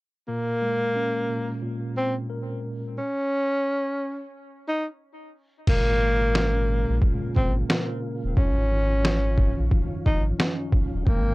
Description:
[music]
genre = hip hop, boom-bap hip-hop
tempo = 89 BPM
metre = 4/4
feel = swing 60% on 16ths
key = unclear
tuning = A4 = 441 Hz
[part]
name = breathy tenor saxophone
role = melody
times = 0.3-11.3 s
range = Bb3 to Eb4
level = -26 LUFS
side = equal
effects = high-pass filter, low-pass filter
[part]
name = mellow tine electric piano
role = accompaniment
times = 0.3-11.3 s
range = Gb2 to Bb4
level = -32 LUFS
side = equal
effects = medium stereo tremolo, cassette tape, high-pass filter, low-pass filter
[part]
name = mellow tonewheel organ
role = sustained chords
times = 5.7-11.3 s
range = Db3 to G5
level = -35 LUFS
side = equal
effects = chorus vibrato, wide subtle chorus, high-pass filter, low-pass filter
[part]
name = warm sub bass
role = bass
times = 5.7-11.3 s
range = Eb1 to Bb1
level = -24 LUFS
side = equal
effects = transformer saturation
[part]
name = trip hop sampler-style drum kit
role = drums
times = 5.7-11.3 s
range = crash cymbal, kick drum, snare drum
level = -23 LUFS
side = equal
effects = none
[sound]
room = little or no reverb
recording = dry, gritty hardware recording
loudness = -22 LUFS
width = side -22 dB against mid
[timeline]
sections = 0.3-5.7 A section; 5.7-11.3 B section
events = hi-hats muted 5.7-11.3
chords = 0.3 Bbm7; 3.0 N.C.; 5.7 Bbm7/Ab; 8.4 Ebm9/Ab

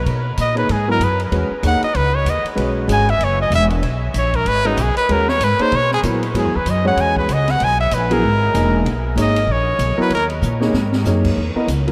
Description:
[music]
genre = modal jazz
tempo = 191 BPM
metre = 4/4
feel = swing 60% on 8ths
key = E lydian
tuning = A4 = 439 Hz
[part]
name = bright trumpet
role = melody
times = 0.0-10.3 s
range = D#4 to G#5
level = -21 LUFS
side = equal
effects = none
[part]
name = upright bass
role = bass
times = 0.0-11.9 s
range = E1 to B2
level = -22 LUFS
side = equal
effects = none
[part]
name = open jazz drum kit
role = drums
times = 0.1-11.9 s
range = crash cymbal, hi-hat, kick drum, ride cymbal, snare drum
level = -31 LUFS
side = equal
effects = none
[part]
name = warm concert grand piano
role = accompaniment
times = 0.5-11.9 s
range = A#2 to D#5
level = -24 LUFS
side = equal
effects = none
[sound]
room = moderate huge ambient reverb, RT60 8.9 s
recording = in a vast, echoing space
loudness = -17 LUFS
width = mono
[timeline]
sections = 0.0-11.4 A section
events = trumpet solo 0.0-11.4; drum fill 10.4-11.1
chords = 0.0 G#madd9; 1.3 Emaj9; 3.8 G#madd9; 6.3 Emaj9; 8.9 G#madd9; 11.4 Emaj7(no3)

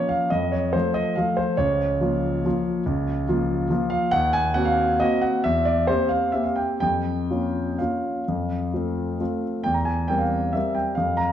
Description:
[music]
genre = classical, piano waltz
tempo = 120-151 BPM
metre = 3/4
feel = rubato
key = Bb minor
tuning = A4 = 444 Hz
[part]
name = warm concert grand piano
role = solo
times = 0.0-11.3 s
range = Db2 to Bb5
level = -21 LUFS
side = equal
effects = none
[sound]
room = wet recital hall reverb, RT60 1.7 s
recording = dark, warm production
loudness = -21 LUFS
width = side -10 dB against mid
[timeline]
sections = 0.0-11.3 A section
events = none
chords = 0.3 F; 1.6 Bbm/Db; 4.1 Cm7b5/Eb; 5.4 C7/E; 6.8 Bbm/F; 8.3 F; 9.7 C7/E

